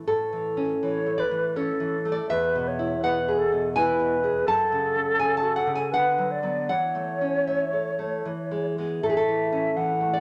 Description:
romantic duo for flute and classical guitar; 76-84 BPM; 3/4; rubato; A major; A4 = 440 Hz
nylon-string guitar; accompaniment; 0.0-10.2 s; E2 to A5; -27 LUFS; equal
mellow silver concert flute; melody; 0.8-10.2 s; A4 to F#5; -28 LUFS; equal
moderate large studio reverb, RT60 1.2 s; -25 LUFS; mono
0.1-10.2 A section
0.1 A; 2.3 E; 4.5 F#m; 5.9 Bm/D; 6.7 A/E; 8.3 E; 9.0 A

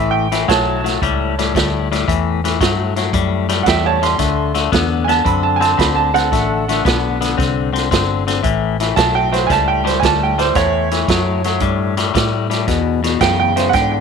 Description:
electric blues shuffle; 113 BPM; 4/4; swing 68% on 8ths; A mixolydian; A4 = 436 Hz
bright upright piano; second line; 0.0-14.0 s; A4 to C6; -18 LUFS; right 9 dB
twangy electric guitar; riff; 0.0-14.0 s; E2 to C4; -18 LUFS; left 13 dB
vintage muted fingered electric bass; bass; 0.0-14.0 s; G1 to A2; -21 LUFS; equal
vintage drum kit; drums; 0.3-13.9 s; hi-hat, kick drum, snare drum; -20 LUFS; right 4 dB
moderate spring reverb, RT60 2.4 s; 1960s-style stereo with parts hard left and right; -14 LUFS; side -6 dB against mid
0.0-14.0 A section
upright piano solo 0.0-14.0
0.0 A7; 4.2 D7; 8.4 A7; 12.7 E7

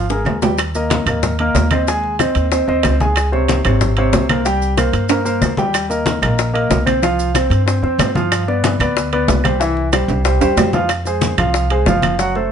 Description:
latin, salsa; 186 BPM; 4/4; straight; F minor; A4 = 440 Hz
warm concert grand piano; accompaniment; 0.0-12.5 s; C3 to Ab5; -18 LUFS; equal
upright bass; bass; 0.0-12.5 s; Gb1 to G2; -19 LUFS; equal
bongos; percussion; 0.1-12.4 s; -23 LUFS; left 9 dB
congas; percussion; 0.1-12.5 s; -22 LUFS; left 2 dB
maracas; percussion; 0.1-12.4 s; -31 LUFS; right 4 dB
timbales; percussion; 0.1-12.2 s; -22 LUFS; right 6 dB
claves; percussion; 0.3-12.2 s; -24 LUFS; right 4 dB
light reverb; nothing above 10.6 kHz; -14 LUFS; side -8 dB against mid
0.6-10.9 A section; 10.9-12.5 B section
drum fill 0.0-0.6, 5.1-5.7, 10.1-10.9
0.0 Db5 (rootless); 0.6 Eb5; 1.9 Ab/Eb; 3.2 Db5; 4.5 C5; 5.7 Eb; 7.0 Csus4; 8.3 G7; 9.6 C; 10.9 Fm

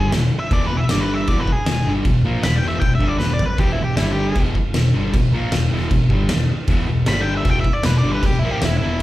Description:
garage rock duo or trio; 156 BPM; 4/4; straight; A4 = 439 Hz
octave-fuzz lead guitar; melody; 0.0-4.4, 7.1-9.0 s; E4 to B5; -24 LUFS; left 1 dB; distortion
fuzz guitar; riff; 0.0-9.0 s; E2 to A#3; -20 LUFS; equal; distortion
overdriven picked electric bass; bass; 0.0-9.0 s; E1 to A#1; -25 LUFS; equal
oversized low-tuned drum kit; drums; 0.1-9.0 s; crash cymbal, kick drum, snare drum, toms; -21 LUFS; equal
moderate large studio reverb, RT60 0.8 s; band playing live in one room; -16 LUFS; side -16 dB against mid
0.0-9.0 A section
lead electric guitar solo 0.0-9.0; drum fill 3.2-3.6
0.0 E5; 0.9 G5; 1.3 E5; 4.0 G5; 4.4 E5; 7.1 G5; 7.5 E5

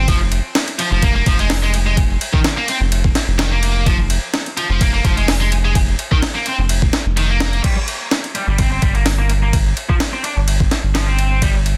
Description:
breakbeat, breaks; 127 BPM; 4/4; swing 53% on 16ths; F minor; A4 = 440 Hz
high-gain distorted guitar; riff; 0.0-11.5 s; Eb3 to D4; -24 LUFS; equal; distortion, overdrive, low-pass filter, digital delay
saturated sub bass; bass; 0.0-11.7 s; F1 to G1; -20 LUFS; equal; tube saturation
breakbeat sampler-style drum kit; drums; 0.1-11.8 s; crash cymbal, hi-hat, kick drum, ride cymbal, snare drum; -20 LUFS; equal; studio reverb
digital ambience; dense, heavily limited modern master; -17 LUFS; mono
0.0-7.6 A section; 7.6-11.8 B section
drop 0.0-7.6

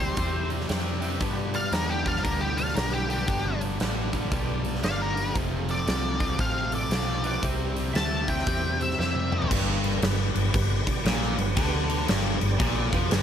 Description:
blues rock power trio and southern rock; 116 BPM; 4/4; swing 64% on 8ths; G mixolydian; A4 = 440 Hz
octave-fuzz lead guitar; melody; 0.0-9.5 s; G4 to A5; -30 LUFS; left 2 dB; distortion
lightly driven lead guitar; second line; 0.0-9.5 s; D4 to E5; -39 LUFS; right 2 dB
overdriven tonewheel organ; sustained chords; 0.0-13.2 s; B3 to D5; -37 LUFS; right 5 dB; slow rotary speaker, chorus vibrato
cranked stack guitar; riff; 0.0-13.2 s; F2 to C4; -30 LUFS; left 1 dB; overdrive
vintage muted fingered electric bass; bass; 0.0-13.2 s; F1 to G2; -30 LUFS; equal
huge arena drum kit; drums; 0.2-13.2 s; crash cymbal, hi-hat, kick drum, snare drum, toms; -28 LUFS; equal
light reverb; -24 LUFS; side -9 dB against mid
0.0-9.5 A section; 9.5-13.2 B section
drum fill 9.0-9.5
0.0 C; 1.2 G; 5.4 F; 7.4 C; 9.5 G

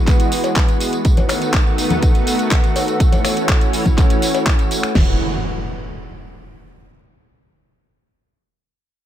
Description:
progressive house; 123 BPM; 4/4; straight; E major; A4 = 439 Hz
lush unison pad; sustained chords; 0.0-5.2 s; D#3 to F#4; -20 LUFS; right 1 dB; chorus, sidechain pumping
pop drum kit; drums; 0.1-5.1 s; crash cymbal, kick drum, snare drum; -15 LUFS; equal
pop drum kit; drums; 0.1-4.9 s; finger snaps, handclaps, hi-hat, tambourine; -23 LUFS; equal; sidechain pumping on hats, sidechain pumping on perc
cowbell and congas; percussion; 0.4-4.4 s; -23 LUFS; left 4 dB; sidechain pumping on perc
plucky analog bass; bass; 5.0-5.2 s; E1; -21 LUFS; equal; tube saturation, sidechain pumping
impact; sound effects; 5.0-6.9 s; -25 LUFS; equal
little or no reverb; -14 LUFS; side -11 dB against mid
0.0-5.0 A section; 5.0-6.9 B section
0.0 Eadd9; 1.1 B7; 3.0 A6; 5.0 Eadd9

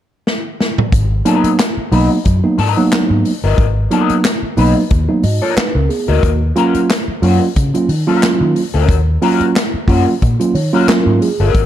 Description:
funk; 90 BPM; 4/4; swing 56% on 16ths; G# dorian; A4 = 439 Hz
swinging big-band drum kit; drums; 0.3-11.7 s; handclaps, hi-hat, kick drum, snare drum, toms; -18 LUFS; equal
vintage muted fingered electric bass; bass; 0.9-11.7 s; G1 to D#3; -15 LUFS; equal
electric guitar at the edge of break-up; accompaniment; 1.3-11.6 s; F#3 to C#5; -20 LUFS; left 10 dB; wah, spring reverb
mellow tine electric piano; stabs; 1.3-11.5 s; F#3 to D#5; -14 LUFS; right 3 dB
light reverb; -12 LUFS; side -11 dB against mid
0.9-11.7 A section
drum fill 0.3-0.9; tine electric piano fill 10.2-11.5
0.0 N.C.; 0.9 G#m9; 6.2 D#m7

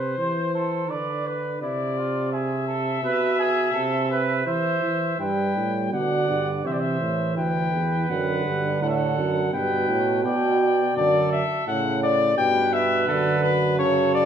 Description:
classical, imitative canzona for brass ensemble; 84 BPM; 4/4; straight; A minor, G major from 5.2 s; A4 = 442 Hz
warm cornet; melody; 0.0-14.3 s; A4 to G5; -25 LUFS; left 5 dB
mellow trumpet; second line; 0.0-14.3 s; E4 to D5; -28 LUFS; right 6 dB
mellow bass trombone; bass; 0.0-14.3 s; D2 to E3; -26 LUFS; right 2 dB
mellow euphonium; accompaniment; 5.2-14.3 s; B2 to G3; -25 LUFS; right 3 dB
wet recital hall reverb, RT60 1.6 s; small room ambience; -21 LUFS; side -8 dB against mid
0.0-5.2 A section; 5.2-14.3 B section
0.0 Am/C; 0.9 Bdim/D; 2.3 E; 3.7 Am/C; 5.2 G; 6.6 Am; 8.1 D/F#; 9.5 G; 11.0 D/F#; 12.4 Em/G

